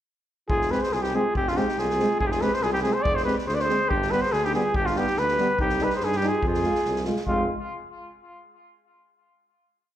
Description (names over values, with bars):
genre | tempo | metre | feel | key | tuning
balkan folk, Balkan brass band | 142 BPM | 2/4 | swing 55% on 16ths | F dorian sharp4 | A4 = 440 Hz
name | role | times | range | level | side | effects
clear flugelhorn | melody | 0.5-7.5 s | F4 to D5 | -24 LUFS | equal | plate reverb, slapback echo, tape echo
warm clarinet | second line | 0.5-7.5 s | C4 to B4 | -33 LUFS | right 1 dB | plate reverb, slapback echo
mellow tuba | bass | 0.5-7.5 s | F1 to G2 | -31 LUFS | equal | none
street-band drum kit | percussion | 0.5-7.5 s | kick drum, snare drum | -32 LUFS | equal | none
clear trombone | accompaniment | 0.7-7.5 s | B3 to F4 | -32 LUFS | left 3 dB | plate reverb, slapback echo
warm euphonium | accompaniment | 0.7-7.5 s | G3 to Ab3 | -31 LUFS | right 4 dB | plate reverb, slapback echo
room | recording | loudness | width
light reverb | live gig heard through the venue's PA, club reverb | -22 LUFS | side -11 dB against mid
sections
0.5-7.3 A section; 7.3-8.1 final chord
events
none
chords
0.5 Fm; 3.9 G; 5.6 Cm; 6.4 Fm